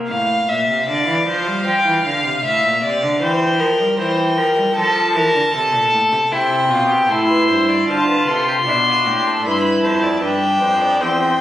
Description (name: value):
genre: classical, baroque-style fugue for string quartet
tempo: 77 BPM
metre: 4/4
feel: straight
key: F major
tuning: A4 = 440 Hz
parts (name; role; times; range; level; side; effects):
- rich viola; accompaniment; 0.0-0.1, 6.3-11.4 s; C4 to F4; -20 LUFS; right 1 dB; none
- rich violin; melody; 0.1-11.4 s; F5 to C6; -20 LUFS; left 3 dB; none
- rich violin; second line; 0.1-11.4 s; E4 to G5; -18 LUFS; equal; none
- rich cello; bass; 0.1-11.4 s; E2 to G3; -21 LUFS; right 1 dB; none
room: moderate recital hall reverb, RT60 1.5 s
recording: recorded on a phone in the room, studio reverb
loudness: -14 LUFS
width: side -12 dB against mid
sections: 0.1-11.4 A section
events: none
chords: 0.1 F/A; 3.2 C7/E; 4.8 F; 6.3 C; 7.9 Dm7; 9.4 G7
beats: | 0.09 0.88 1.66 2.44 | 3.22 3.99 4.76 5.54 | 6.31 7.09 7.88 8.66 | 9.45 10.23 11.02